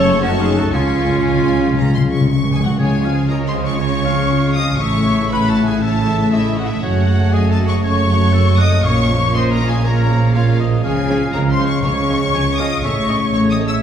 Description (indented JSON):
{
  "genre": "cinematic",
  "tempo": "119 BPM",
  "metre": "4/4",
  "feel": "straight",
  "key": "Db major",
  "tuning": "A4 = 439 Hz",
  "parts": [
    { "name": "warm symphonic violin section", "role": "melody", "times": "0.0-13.7 s", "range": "F4 to E6", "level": "-24 LUFS", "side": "left 3 dB", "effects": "none" },
    { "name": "mellow hollow small flute group", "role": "second line", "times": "0.0-13.8 s", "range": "E5 to E6", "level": "-28 LUFS", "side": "left 4 dB", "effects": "none" },
    { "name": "warm oboe", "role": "second line", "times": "0.0-13.8 s", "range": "Db4 to Ab5", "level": "-28 LUFS", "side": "equal", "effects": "none" },
    { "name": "warm symphonic violin section", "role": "second line", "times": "0.0-13.7 s", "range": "E4 to Db6", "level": "-30 LUFS", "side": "left 2 dB", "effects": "none" },
    { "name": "dark symphonic viola section", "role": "accompaniment", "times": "0.0-13.7 s", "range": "E3 to F4", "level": "-25 LUFS", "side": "equal", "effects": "none" },
    { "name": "bright trombone section", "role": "sustained chords", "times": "0.0-13.8 s", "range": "Db3 to Bb3", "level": "-26 LUFS", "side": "right 1 dB", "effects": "none" },
    { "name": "dark French horn section", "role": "sustained chords", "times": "0.0-13.8 s", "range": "Db4 to Db5", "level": "-26 LUFS", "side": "right 1 dB", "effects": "none" },
    { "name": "dark trumpet section", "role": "stabs", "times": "0.0-13.8 s", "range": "E4 to E5", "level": "-25 LUFS", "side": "left 1 dB", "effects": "none" },
    { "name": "warm studio cello section", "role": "bass", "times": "0.0-13.8 s", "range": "Db2 to Db3", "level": "-18 LUFS", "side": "equal", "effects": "none" },
    { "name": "warm studio double bass section", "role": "bass", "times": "0.0-13.8 s", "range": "Gb1 to Db2", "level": "-20 LUFS", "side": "right 3 dB", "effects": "none" },
    { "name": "timpani", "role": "percussion", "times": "0.7-3.5 s", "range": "Db3", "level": "-18 LUFS", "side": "left 2 dB", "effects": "none" }
  ],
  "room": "wet recital hall reverb, RT60 1.7 s",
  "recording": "heard from further back in the room",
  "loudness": "-13 LUFS",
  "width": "side -8 dB against mid",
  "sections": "0.0-2.8 A section; 2.8-13.8 B section",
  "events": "timpani fill 0.7-2.8",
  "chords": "0.0 Gbm; 0.7 Db; 4.8 A; 6.8 Gbm; 8.8 Bbm; 10.8 Db; 12.8 A",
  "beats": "0.23 | 0.74 1.25 1.77 2.28 | 2.79 3.30 3.80 4.30 | 4.81 5.31 5.82 6.32 | 6.83 7.33 7.83 8.33 | 8.84 9.34 9.84 10.34 | 10.84 11.34 11.84 12.34 | 12.84 13.34"
}